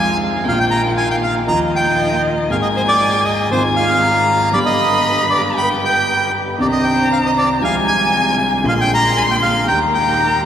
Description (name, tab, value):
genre	tango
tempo	117 BPM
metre	4/4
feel	rubato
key	unclear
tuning	A4 = 437 Hz
part	bandoneon	melody	0.0-10.4 s	C5 to B5	-17 LUFS	right 1 dB	none
part	rich violin	second line	0.0-10.5 s	Eb5 to C6	-19 LUFS	left 2 dB	none
part	warm concert grand piano	accompaniment	0.0-10.5 s	G1 to Ab4	-20 LUFS	equal	none
part	rich studio string section	stabs	0.0-10.5 s	C3 to C5	-25 LUFS	right 1 dB	none
room	wet cathedral reverb, RT60 6.9 s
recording	recorded in a church or concert hall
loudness	-13 LUFS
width	side -9 dB against mid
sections	0.0-10.5 A section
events	none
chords	0.4 Bbsus4; 1.5 Ebsus2; 2.5 Absus2; 3.5 Fm7/Ab; 4.5 G; 6.6 Cmadd9; 7.6 Fmadd9/C; 8.7 Bb7; 9.7 Eb